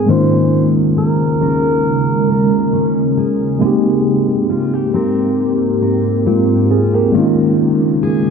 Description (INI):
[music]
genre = R&B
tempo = 68 BPM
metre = 4/4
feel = swing 54% on 16ths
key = Ab major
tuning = A4 = 436 Hz
[part]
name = breathy alto saxophone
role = melody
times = 0.0-3.1 s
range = Ab4 to C5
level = -20 LUFS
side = equal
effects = none
[part]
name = mellow tine electric piano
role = accompaniment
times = 0.0-8.3 s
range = Ab3 to Bb4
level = -16 LUFS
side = right 1 dB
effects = medium stereo tremolo
[part]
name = ethereal airy pad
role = sustained chords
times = 0.0-8.3 s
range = Eb2 to G4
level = -18 LUFS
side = right 2 dB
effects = ensemble chorus, built-in reverb, phaser
[part]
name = picked steel-string acoustic guitar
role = arpeggios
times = 0.0-8.3 s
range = Eb3 to Bb4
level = -18 LUFS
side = left 3 dB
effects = none
[sound]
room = moderate plate reverb, RT60 3.3 s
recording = dark, warm production, low-pass filter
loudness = -12 LUFS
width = side -6 dB against mid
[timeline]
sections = 0.0-8.3 A section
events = filter sweep 0.0-8.3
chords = 0.1 Eb7sus4; 3.6 Abmaj9; 7.1 Eb7sus4